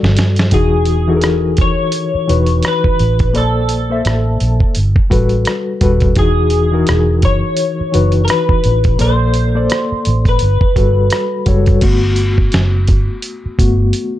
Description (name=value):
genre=R&B, neo-soul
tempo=85 BPM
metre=4/4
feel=swing 59% on 16ths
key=unclear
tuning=A4 = 439 Hz
part: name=reed electric piano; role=accompaniment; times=0.0-14.2 s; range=E3 to E5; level=-17 LUFS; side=left 3 dB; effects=overdrive, fast tremolo
part: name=vintage muted fingered electric bass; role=bass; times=0.0-13.9 s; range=D#1 to G2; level=-14 LUFS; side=right 1 dB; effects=none
part: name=dusty soul sampler-style drum kit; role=drums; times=0.0-14.1 s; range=crash cymbal, hi-hat, kick drum, rim click, snare drum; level=-15 LUFS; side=right 1 dB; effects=none
part: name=electric guitar through a small old amp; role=melody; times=0.5-11.4 s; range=G#4 to C#5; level=-18 LUFS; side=left 2 dB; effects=analog chorus, plate reverb
room=little or no reverb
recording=dark, warm production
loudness=-11 LUFS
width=side -13 dB against mid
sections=0.5-11.8 A section; 11.8-14.2 B section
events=drum fill 0.0-0.5, 13.9; reed electric piano solo 11.8-14.2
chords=0.0 Gmaj7sus2; 0.5 Emaj9; 3.4 A#maj9; 4.8 Gmaj9; 6.2 Emaj9; 9.0 A#maj9; 10.4 Gmaj9